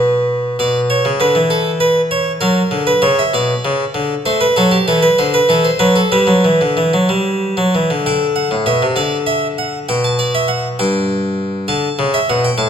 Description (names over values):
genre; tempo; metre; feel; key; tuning
classical, baroque-style two-part invention for harpsichord; 66 BPM (dotted quarters); 6/8; straight; G major from 4.2 s; A4 = 436 Hz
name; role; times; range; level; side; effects
harpsichord; solo; 0.0-12.7 s; G2 to A5; -13 LUFS; equal; none
room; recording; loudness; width
wet recital hall reverb, RT60 1.7 s; none; -13 LUFS; side -8 dB against mid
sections
0.6-8.0 A section; 8.0-12.7 B section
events
none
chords
0.0 N.C.; 0.6 Bmadd9; 1.5 Aadd9/E; 2.4 F#; 3.3 Bm; 4.2 Am; 5.2 D7; 6.1 G; 8.0 G/D; 9.0 D; 9.9 G/B; 10.8 N.C.; 11.7 D